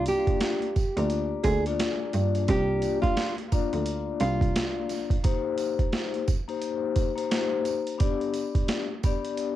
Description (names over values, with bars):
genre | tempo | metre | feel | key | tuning
hip hop, boom-bap hip-hop | 87 BPM | 4/4 | swing 61% on 16ths | unclear | A4 = 439 Hz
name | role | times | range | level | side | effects
nylon-string guitar | melody | 0.0-5.2 s | F4 to Ab4 | -29 LUFS | right 2 dB | cassette tape, analog delay
vibraphone with soft mallets | accompaniment | 0.0-9.6 s | Bb3 to D5 | -29 LUFS | left 7 dB | none
boom bap sampler-style drum kit | drums | 0.1-9.6 s | hi-hat, kick drum, snare drum | -27 LUFS | right 2 dB | cassette tape
tambourine | percussion | 0.1-9.2 s | none | -48 LUFS | right 13 dB | none
clear cello | bass | 1.0-4.5 s | C2 to G2 | -28 LUFS | right 2 dB | transformer saturation
room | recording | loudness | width
little or no reverb | home recording on cassette | -24 LUFS | side -13 dB against mid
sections
0.0-9.6 A section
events
none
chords
0.0 Bb; 5.2 Cm7; 8.0 G